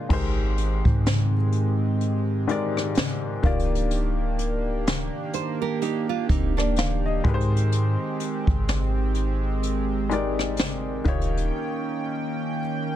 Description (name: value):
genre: contemporary R&B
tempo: 63 BPM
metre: 4/4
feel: swing 58% on 16ths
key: unclear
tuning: A4 = 440 Hz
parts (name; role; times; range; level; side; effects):
- dark baby grand piano; accompaniment; 0.0-13.0 s; Ab2 to F5; -30 LUFS; left 5 dB; plate reverb
- chorused pulse-width pad; sustained chords; 0.0-13.0 s; Eb3 to G5; -29 LUFS; right 2 dB; none
- soft 808-style bass; bass; 0.1-11.5 s; D1 to Ab2; -25 LUFS; equal; none
- jazz brush drum kit; drums; 0.1-11.5 s; crash cymbal, hi-hat, kick drum, rim click, snare drum; -25 LUFS; equal; vintage 12-bit sampler grit, soft clipping on snare
- nylon-string guitar; arpeggios; 5.3-7.2 s; Bb3 to C5; -29 LUFS; right 10 dB; ping-pong delay
room: light reverb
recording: dense, heavily limited modern master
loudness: -22 LUFS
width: side -12 dB against mid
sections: 0.1-13.0 A section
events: break 11.5-13.0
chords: 0.1 Abmaj7; 3.4 Ebmaj7; 7.2 Abmaj7; 11.1 Eb7